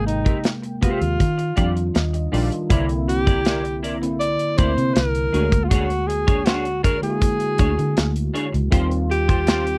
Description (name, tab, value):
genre	lush 1970s-style soul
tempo	80 BPM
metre	4/4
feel	straight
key	unclear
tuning	A4 = 440 Hz
part	breathy alto saxophone	melody	0.0-9.8 s	Eb4 to D5	-26 LUFS	equal	none
part	tine electric piano	accompaniment	0.0-9.8 s	C3 to G5	-28 LUFS	equal	analog chorus
part	vintage muted fingered electric bass	bass	0.0-9.8 s	Ab1 to Eb3	-26 LUFS	equal	none
part	electric guitar through a small old amp	riff	0.1-9.7 s	C4 to D5	-30 LUFS	equal	analog chorus
part	modern studio drum kit	drums	0.1-9.8 s	hi-hat, kick drum, snare drum	-22 LUFS	equal	none
room	little or no reverb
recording	dry, close 1970s-style studio recording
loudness	-20 LUFS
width	mono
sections	0.0-2.7 A section; 2.7-9.8 B section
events	tine electric piano fill 1.6-2.7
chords	0.0 Abmaj9; 1.2 Ebmaj9; 2.7 C9; 5.3 Bb7alt/D; 8.7 Eb69